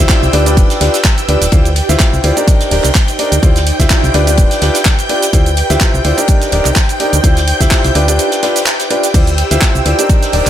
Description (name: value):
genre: piano house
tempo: 126 BPM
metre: 4/4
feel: swing 55% on 16ths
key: D dorian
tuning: A4 = 440 Hz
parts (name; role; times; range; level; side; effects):
- string machine, violins; sustained chords; 0.0-10.5 s; G5 to G6; -21 LUFS; equal; ensemble chorus, sidechain pumping
- clear concert grand piano; riff; 0.0-10.5 s; D4 to E5; -16 LUFS; equal; sidechain pumping, ping-pong delay
- solid FM bass; bass; 0.0-10.5 s; D1 to D2; -14 LUFS; equal; sidechain pumping
- ethereal airy pad; texture; 0.0-10.5 s; Eb4 to G5; -20 LUFS; right 2 dB; ensemble chorus, built-in reverb, sidechain pumping
- electronic kick drum; drums; 0.1-10.2 s; none; -11 LUFS; equal; none
- house drum kit; drums; 0.1-10.5 s; crash cymbal, handclaps, hi-hat, shaker; -17 LUFS; right 2 dB; none
- loose indie drum kit; drums; 0.1-10.5 s; hi-hat, ride cymbal, snare drum; -24 LUFS; left 1 dB; sidechain pumping on cymbals, high-pass filter on cymbals, sidechain pumping on hats, high-pass filter on hats, high-pass filter on snare, high-pass filter on room
room: small room ambience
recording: none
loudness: -9 LUFS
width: side -11 dB against mid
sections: 0.0-10.5 A section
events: break 8.2-9.1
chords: 0.3 G7/D; 1.5 Dm11; 2.5 Ebmaj7/D; 3.4 Dm11; 4.1 G7/D; 5.3 Dm11; 6.3 Ebmaj7/D; 7.2 Dm11; 8.0 G7/D; 9.1 Dm11